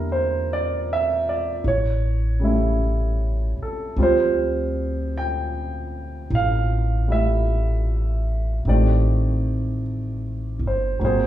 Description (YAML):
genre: jazz ballad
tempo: 51 BPM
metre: 4/4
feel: swing 66% on 8ths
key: unclear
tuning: A4 = 441 Hz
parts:
  - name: warm baby grand piano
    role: accompaniment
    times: 0.0-11.3 s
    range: C#3 to G5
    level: -23 LUFS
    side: right 2 dB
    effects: none
  - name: upright bass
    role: bass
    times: 0.0-11.3 s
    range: G1 to E2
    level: -22 LUFS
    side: equal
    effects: none
room: moderate large studio reverb, RT60 1.2 s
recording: band playing live in one room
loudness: -20 LUFS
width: side -12 dB against mid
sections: 0.0-11.3 A section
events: none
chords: 0.0 Em7b5; 1.6 A7; 4.0 Dm11; 8.7 Am7b5